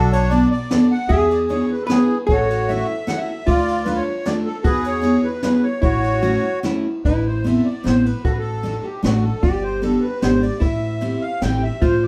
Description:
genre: musette waltz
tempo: 152 BPM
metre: 3/4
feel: rubato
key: A major, A minor from 7.0 s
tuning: A4 = 440 Hz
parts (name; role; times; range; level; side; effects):
- accordion; melody; 0.0-12.1 s; D4 to G5; -26 LUFS; equal; light tremolo tuning
- archtop guitar, miked and amplified; second line; 0.0-12.1 s; E4 to B4; -26 LUFS; equal; none
- upright bass; bass; 0.0-12.1 s; G1 to E2; -25 LUFS; equal; none
- jazz brush drum kit; drums; 0.1-11.9 s; kick drum, ride cymbal, snare drum; -27 LUFS; equal; none
- picked steel-string acoustic guitar; accompaniment; 0.3-11.6 s; A3 to A4; -22 LUFS; equal; none
room: wet small room reverb, RT60 0.5 s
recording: heard from further back in the room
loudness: -19 LUFS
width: mono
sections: 0.0-7.0 A section; 7.0-12.1 B section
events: none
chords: 0.0 Bm7; 1.1 E7; 2.3 A6; 3.5 Dm; 4.7 E7; 5.8 A6; 7.0 Amadd9; 8.2 D/A; 9.4 Gadd9; 10.6 Am7

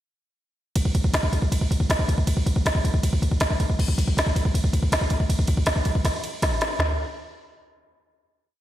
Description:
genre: metal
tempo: 159 BPM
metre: 4/4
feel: straight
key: none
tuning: none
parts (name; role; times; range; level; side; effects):
- organic electronic drum kit; drums; 0.8-6.9 s; crash cymbal, kick drum, ride cymbal, snare drum, toms; -20 LUFS; equal; none
room: light reverb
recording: none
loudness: -20 LUFS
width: side -13 dB against mid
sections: 0.8-6.8 riff; 6.8-8.6 final hit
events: drum fill 6.0-6.8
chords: none

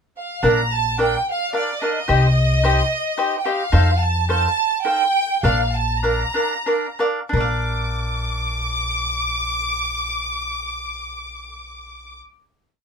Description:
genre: mexican folk, mariachi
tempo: 88-110 BPM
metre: 3/4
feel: straight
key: Bb major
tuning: A4 = 440 Hz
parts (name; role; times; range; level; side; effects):
- clear chamber violin section; melody; 0.2-12.1 s; D5 to D6; -22 LUFS; right 2 dB; none
- cavaquinho; accompaniment; 0.4-12.3 s; D4 to F5; -21 LUFS; equal; none
- upright bass; bass; 0.4-12.2 s; Bb1 to F2; -21 LUFS; left 1 dB; none
room: light reverb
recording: minimal, uncompressed stereo recording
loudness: -18 LUFS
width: side -6 dB against mid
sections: 0.0-0.4 pickup bar; 0.4-7.3 A section; 7.3-11.4 final chord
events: slowing down 3.7-7.3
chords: 0.4 Bb; 2.1 Cm; 3.7 F7; 5.4 Bb

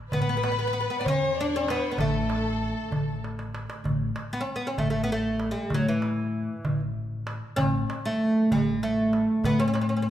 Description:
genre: Arabic maqam ensemble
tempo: 64 BPM (dotted quarters)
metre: 6/8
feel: straight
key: A maqam rast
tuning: A4 = 440 Hz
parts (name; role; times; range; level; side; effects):
- oud; melody; 0.1-10.1 s; E3 to D4; -27 LUFS; right 1 dB; none
- dark studio violin section; second line; 0.1-3.2 s; A4 to D5; -32 LUFS; equal; none
- rich violin; second line; 0.1-3.2 s; A4 to D5; -32 LUFS; left 6 dB; none
- upright bass; bass; 0.1-10.1 s; A1 to A2; -30 LUFS; left 1 dB; none
- darbuka; percussion; 0.1-10.1 s; none; -31 LUFS; right 1 dB; none
room: moderate recital hall reverb, RT60 1.7 s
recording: minimal, uncompressed stereo recording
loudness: -24 LUFS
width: side -11 dB against mid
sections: 0.0-3.8 A section; 3.8-10.1 B section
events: drum fill 3.2-3.8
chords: none

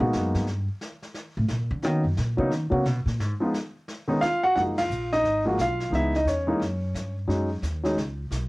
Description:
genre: jazz piano trio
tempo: 176 BPM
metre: 4/4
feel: swing 63% on 8ths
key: F# major from 4.6 s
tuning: A4 = 440 Hz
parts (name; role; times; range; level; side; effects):
- warm grand piano; melody; 0.0-8.0 s; Eb3 to Gb5; -24 LUFS; equal; none
- upright bass; bass; 0.0-8.5 s; F#1 to D#3; -27 LUFS; equal; none
- jazz brush drum kit; drums; 0.1-8.5 s; brushed snare drum, hi-hat, ride cymbal, snare drum; -40 LUFS; equal; cassette tape
room: light reverb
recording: home recording on cassette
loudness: -23 LUFS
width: side -23 dB against mid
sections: 0.0-4.6 A section; 4.6-8.5 B section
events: upright bass solo 0.0-4.6; band accent 4.7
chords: 0.5 Gmadd9; 1.8 Bmaj7; 3.2 Fm; 3.9 N.C.; 4.6 F#maj13; 5.9 C#m7; 6.6 F#5; 7.3 B69

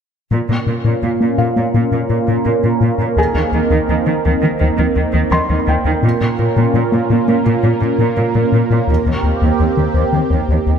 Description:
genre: cinematic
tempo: 84 BPM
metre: 4/4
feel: straight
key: Bb dorian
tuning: A4 = 441 Hz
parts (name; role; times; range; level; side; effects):
- warm analog pad; sustained chords; 0.3-10.8 s; Bb3 to Bb4; -17 LUFS; right 3 dB; chorus, low-pass filter
- rubbery square bass; riff; 0.3-10.8 s; Eb2 to Bb3; -17 LUFS; left 3 dB; low-pass filter
- rich symphonic cello section; bass; 0.3-10.7 s; Eb2 to Eb3; -20 LUFS; right 3 dB; none
- felt-muted upright piano; texture; 1.4-8.9 s; Ab4 to C6; -24 LUFS; left 2 dB; ping-pong delay
room: moderate scoring stage reverb, RT60 1.7 s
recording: none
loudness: -13 LUFS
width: side -7 dB against mid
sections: 0.3-10.8 A section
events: filter sweep 0.3-10.8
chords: 0.3 Bbm; 3.2 Eb5; 6.0 Bbm; 8.9 Eb6

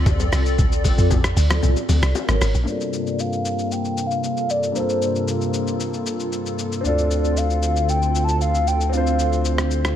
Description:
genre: amapiano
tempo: 115 BPM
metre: 4/4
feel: straight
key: G minor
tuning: A4 = 440 Hz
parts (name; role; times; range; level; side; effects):
- hollow soft pad; sustained chords; 0.0-10.0 s; G2 to D5; -26 LUFS; equal; ensemble chorus, low-pass filter
- deep log drum bass; bass; 0.0-2.7 s; Ab1 to F2; -19 LUFS; equal; none
- lo-fi sampler-style drum kit; drums; 0.1-10.0 s; hi-hat, kick drum, rim click, shaker, toms; -24 LUFS; equal; none
- bongos and congas; percussion; 0.1-2.5 s; none; -28 LUFS; left 6 dB; none
- warm concert grand piano; accompaniment; 2.6-10.0 s; G2 to C5; -26 LUFS; left 3 dB; low-pass filter
- hollow clarinet-like synth lead; melody; 2.7-9.7 s; C5 to A5; -24 LUFS; equal; chorus, low-pass filter, digital delay
- saturated sub bass; bass; 6.8-9.9 s; D2; -21 LUFS; equal; none
room: light reverb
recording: none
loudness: -18 LUFS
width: side -10 dB against mid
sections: 0.0-2.7 A section; 2.7-10.0 B section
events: drop 0.0-2.7; kick muted 1.6-2.7; filter sweep 2.7-10.0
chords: 0.0 Dm7; 2.1 Abm11; 2.7 Gm11; 6.8 Dm7

